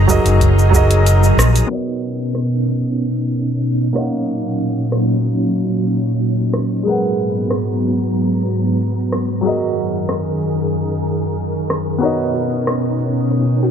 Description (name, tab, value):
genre	sunset chillout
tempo	93 BPM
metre	4/4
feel	straight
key	unclear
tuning	A4 = 441 Hz
part	warm grand piano	accompaniment	0.0-13.7 s	F#3 to F#5	-21 LUFS	right 1 dB	auto-pan, low-pass filter, ping-pong delay, shimmer reverb
part	soft string machine	sustained chords	0.0-13.7 s	F#2 to A#5	-18 LUFS	equal	ensemble chorus
part	soft round pluck	arpeggios	0.0, 12.0-13.7 s	D#4 to A#4	-29 LUFS	left 2 dB	none
part	mellow fretless electric bass	bass	0.0-1.6 s	F#1 to A#1	-12 LUFS	equal	lush chorus
part	electronic kick drum	drums	0.1-0.9 s	none	-17 LUFS	equal	none
part	smooth R&B drum kit	drums	0.1-13.7 s	cabasa, hi-hat, rim click	-23 LUFS	equal	overdrive
room	light reverb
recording	low-pass filter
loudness	-15 LUFS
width	side -8 dB against mid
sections	0.0-1.7 A section; 1.7-13.7 B section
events	filter sweep on grand piano 1.7-13.7; filter sweep on string machine 1.7-13.7; filter sweep 1.7-13.7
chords	0.0 F#69; 1.7 Bmaj9; 4.0 D#m9/A#; 6.9 G#m9; 9.4 F#69; 12.0 Bmaj9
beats	0.41 1.05 | 1.70 2.34 2.99 3.63 | 4.28 4.92 5.57 6.21 | 6.86 7.50 8.15 8.79 | 9.44 10.08 10.73 11.38 | 12.02 12.66 13.31